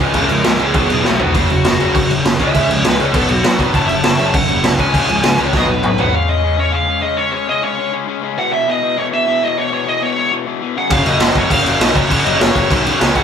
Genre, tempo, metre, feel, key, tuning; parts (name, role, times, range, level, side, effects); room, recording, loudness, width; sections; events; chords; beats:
punk rock; 201 BPM; 4/4; straight; F# major; A4 = 440 Hz
crunchy overdriven guitar; riff; 0.0-13.2 s; E2 to C#4; -21 LUFS; left 7 dB
distorted electric guitar; riff; 0.0-6.1, 10.9-13.2 s; F#2 to G#4; -21 LUFS; right 6 dB; overdrive
tight distorted guitar; riff; 0.0-6.1, 10.9-13.2 s; F#2 to C#4; -24 LUFS; left 1 dB
fuzz picked electric bass; bass; 0.0-6.1, 10.9-13.2 s; E#1 to F#2; -22 LUFS; left 1 dB; overdrive
raw garage drum kit; drums; 0.0-6.1, 10.9-13.2 s; crash cymbal, kick drum, snare drum, toms; -15 LUFS; equal
high-gain lead guitar; melody; 0.1-13.2 s; A3 to A5; -18 LUFS; equal; distortion
moderate small room reverb, RT60 0.6 s; band playing live in one room; -12 LUFS; side -7 dB against mid
0.0-6.1 A section; 6.1-13.2 B section
lead electric guitar solo 0.0-6.1; drum fill 1.1, 5.5-6.1
0.0 C#; 0.8 B5; 1.4 F#5; 2.4 C#; 3.1 B5; 3.7 F#5; 4.8 C#; 5.5 B5; 6.1 C#5; 8.4 E5; 10.8 F#5; 10.9 F#
| 0.16 0.46 0.75 1.05 | 1.35 1.65 1.95 2.25 | 2.55 2.85 3.15 3.45 | 3.75 4.04 4.34 4.64 | 4.94 5.24 5.54 5.84 | 6.14 6.44 6.73 7.03 | 7.33 7.63 7.93 8.23 | 8.53 8.82 9.12 9.42 | 9.72 10.02 10.32 10.62 | 10.91 11.21 11.51 11.81 | 12.11 12.41 12.71 13.00